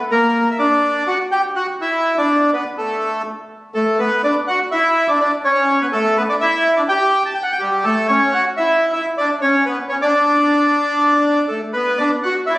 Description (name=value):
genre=tango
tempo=124 BPM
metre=4/4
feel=rubato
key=D major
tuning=A4 = 438 Hz
part: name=bandoneon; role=solo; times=0.1-12.6 s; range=G3 to A5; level=-14 LUFS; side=equal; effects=none
room=moderate concert hall reverb, RT60 1.9 s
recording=recorded on a phone in the room, club reverb, compression, nothing above 10.8 kHz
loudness=-14 LUFS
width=side -19 dB against mid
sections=0.0-12.6 A section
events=none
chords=0.3 Gm/Bb; 2.3 Asus4; 3.3 Asus2; 4.2 D; 6.2 G5; 8.1 Dmaj13; 10.0 D5; 12.0 D